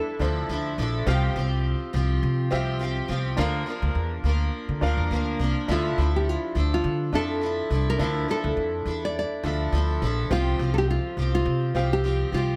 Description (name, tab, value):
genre	acoustic pop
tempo	104 BPM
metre	4/4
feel	swing 55% on 16ths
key	D minor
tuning	A4 = 439 Hz
part	nylon-string guitar	melody	0.0-0.8, 5.7-12.6 s	F4 to D5	-30 LUFS	equal	none
part	picked steel-string acoustic guitar	accompaniment	0.0-12.6 s	C3 to Bb4	-33 LUFS	equal	double-tracked
part	warm concert grand piano	accompaniment	0.0-12.6 s	C4 to F5	-36 LUFS	equal	none
part	upright bass	bass	0.2-12.6 s	Bb1 to D3	-27 LUFS	equal	none
room	small room ambience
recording	none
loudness	-25 LUFS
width	mono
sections	0.0-12.6 A section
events	none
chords	0.0 Dmadd9; 1.1 Csus4; 3.4 Bb/D; 5.7 Dmadd9; 10.3 Csus4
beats	0.49 | 1.07 1.65 2.23 2.81 | 3.38 3.96 4.54 5.12 | 5.70 6.27 6.85 7.43 | 8.01 8.58 9.16 9.74 | 10.31 10.89 11.47 12.04